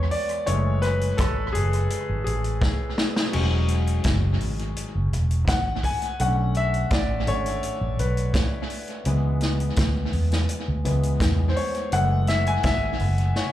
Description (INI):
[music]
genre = lovers rock reggae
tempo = 84 BPM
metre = 4/4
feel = straight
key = E mixolydian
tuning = A4 = 440 Hz
[part]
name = warm grand piano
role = accompaniment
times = 0.0-13.5 s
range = D3 to G#5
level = -27 LUFS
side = left 2 dB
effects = slapback echo
[part]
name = vintage muted fingered electric bass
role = bass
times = 0.0-13.3 s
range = E1 to E2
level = -23 LUFS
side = equal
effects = none
[part]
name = vintage drum kit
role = drums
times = 0.1-13.5 s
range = crash cymbal, hi-hat, kick drum, rim click, snare drum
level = -26 LUFS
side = equal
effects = tape echo
[sound]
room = light reverb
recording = live gig heard through the venue's PA, club reverb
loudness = -21 LUFS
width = side -13 dB against mid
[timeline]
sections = 0.0-13.5 A section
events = grand piano solo 0.0-13.5; drum fill 2.6-3.3, 13.4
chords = 0.5 F#m9; 3.3 E6; 6.2 Bm7; 9.1 C#m7; 11.9 F#m9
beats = | 0.47 1.19 1.90 2.62 | 3.33 4.05 4.76 5.48 | 6.19 6.91 7.62 8.34 | 9.06 9.77 10.49 11.20 | 11.92 12.64 13.35